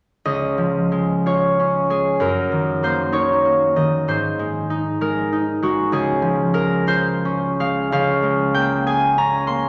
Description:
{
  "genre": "classical, solo harp piece",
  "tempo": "53-68 BPM (dotted quarters)",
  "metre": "6/8",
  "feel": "rubato",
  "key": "Db major",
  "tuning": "A4 = 442 Hz",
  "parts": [
    { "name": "concert harp", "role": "solo", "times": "0.3-9.7 s", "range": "Db2 to C6", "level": "-19 LUFS", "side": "equal", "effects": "none" }
  ],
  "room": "wet scoring stage reverb, RT60 1.8 s",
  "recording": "none",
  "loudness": "-19 LUFS",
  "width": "mono",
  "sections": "0.3-9.7 A section",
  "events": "none",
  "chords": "0.3 Db; 2.2 Ebm/Gb; 4.1 Ab; 5.9 Db; 7.9 Bbm7/Db",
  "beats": "| 0.26 1.26 | 2.22 3.15 | 4.10 5.03 | 5.94 6.90 | 7.94 8.87"
}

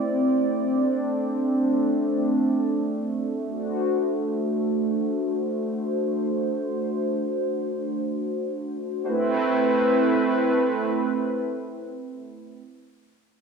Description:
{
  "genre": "synthwave",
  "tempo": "free time",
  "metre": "none",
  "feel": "none",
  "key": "A dorian",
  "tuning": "A4 = 440 Hz",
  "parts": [
    { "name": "brassy analog pad", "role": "sustained chords", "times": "0.0-12.6 s", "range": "A3 to D5", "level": "-22 LUFS", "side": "right 1 dB", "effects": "chorus" }
  ],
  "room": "wet recital hall reverb, RT60 1.8 s",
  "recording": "none",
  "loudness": "-22 LUFS",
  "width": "side -5 dB against mid",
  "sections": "0.0-9.1 A section; 9.1-11.9 B section",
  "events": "none",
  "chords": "0.0 Am; 3.5 D7; 9.1 Amadd9",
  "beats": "free time"
}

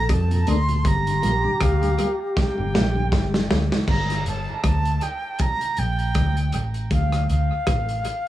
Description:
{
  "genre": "roots reggae",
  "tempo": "79 BPM",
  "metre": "4/4",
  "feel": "swing 57% on 16ths",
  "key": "G minor",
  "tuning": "A4 = 441 Hz",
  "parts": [
    { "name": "bright reedy concert flute", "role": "melody", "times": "0.0-8.3 s", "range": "F5 to C6", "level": "-27 LUFS", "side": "right 2 dB", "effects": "tape echo" },
    { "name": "mellow trombone", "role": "second line", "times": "0.0-3.5 s", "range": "G4 to A4", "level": "-29 LUFS", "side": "left 2 dB", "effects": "tape echo" },
    { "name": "vintage muted fingered electric bass", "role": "bass", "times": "0.0-8.0 s", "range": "G1 to F2", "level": "-22 LUFS", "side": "equal", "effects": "none" },
    { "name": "crunchy breakbeat drum kit", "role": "drums", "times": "0.1-8.2 s", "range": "crash cymbal, hi-hat, kick drum, rim click, snare drum", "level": "-24 LUFS", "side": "equal", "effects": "dub echo" },
    { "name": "mellow tonewheel organ", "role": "accompaniment", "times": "0.3-3.8 s", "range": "G2 to F4", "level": "-28 LUFS", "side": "left 3 dB", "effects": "slow rotary speaker" }
  ],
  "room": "light reverb",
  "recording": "none",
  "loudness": "-19 LUFS",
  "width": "side -14 dB against mid",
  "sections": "0.0-3.9 A section; 3.9-8.3 B section",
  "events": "drum fill 2.4-3.9",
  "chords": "0.0 Bbmaj7; 0.8 Gm7; 3.9 Gm; 6.9 Dm",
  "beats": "0.09 | 0.85 1.61 2.36 3.12 | 3.88 4.63 5.39 6.15 | 6.91 7.67"
}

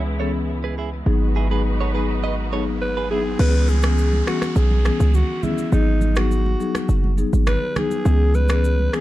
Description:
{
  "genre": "afrobeats",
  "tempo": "103 BPM",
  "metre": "4/4",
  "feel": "straight",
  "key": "C# minor",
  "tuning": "A4 = 440 Hz",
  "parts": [
    { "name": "muted studio string section", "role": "sustained chords", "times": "0.0-3.4 s", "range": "C#3 to B4", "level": "-31 LUFS", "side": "right 1 dB", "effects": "low-pass filter" },
    { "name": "hard-hitting 808-style bass", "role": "bass", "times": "0.0-8.9 s", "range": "F#1 to C#2", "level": "-19 LUFS", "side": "equal", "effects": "none" },
    { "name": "riser and downlifter", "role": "sound effects", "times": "1.0-8.1 s", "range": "none", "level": "-37 LUFS", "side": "right 2 dB", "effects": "none" },
    { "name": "marimba with soft mallets", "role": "accompaniment", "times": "0.2-9.0 s", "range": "E3 to G#4", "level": "-25 LUFS", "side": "left 5 dB", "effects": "low-pass filter" },
    { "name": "direct-recorded clean electric guitar", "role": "riff", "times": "0.2-3.2 s", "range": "E4 to D#5", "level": "-29 LUFS", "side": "right 8 dB", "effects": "low-pass filter, ping-pong delay" },
    { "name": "breathy alto saxophone", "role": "melody", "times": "2.8-9.0 s", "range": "D#4 to B4", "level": "-25 LUFS", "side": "right 1 dB", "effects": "low-pass filter, ping-pong delay" },
    { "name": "afro-pop drum kit", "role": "drums", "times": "3.4-9.0 s", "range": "crash cymbal, finger snaps, rim click, shaker", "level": "-29 LUFS", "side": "equal", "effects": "none" },
    { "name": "congas", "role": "percussion", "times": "3.7-8.9 s", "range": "none", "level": "-30 LUFS", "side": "right 4 dB", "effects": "none" }
  ],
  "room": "little or no reverb",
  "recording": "dark, warm production",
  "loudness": "-17 LUFS",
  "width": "side -15 dB against mid",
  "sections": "0.0-3.4 A section; 3.4-9.0 B section",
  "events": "kick muted 3.4-9.0",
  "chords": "0.0 C#m7; 1.1 G#m7; 3.4 C#m7; 5.7 G#m7; 8.1 C#m7",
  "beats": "0.48 | 1.06 1.65 2.23 2.81 | 3.39 3.98 4.56 5.14 | 5.72 6.31 6.89 7.47 | 8.05 8.64"
}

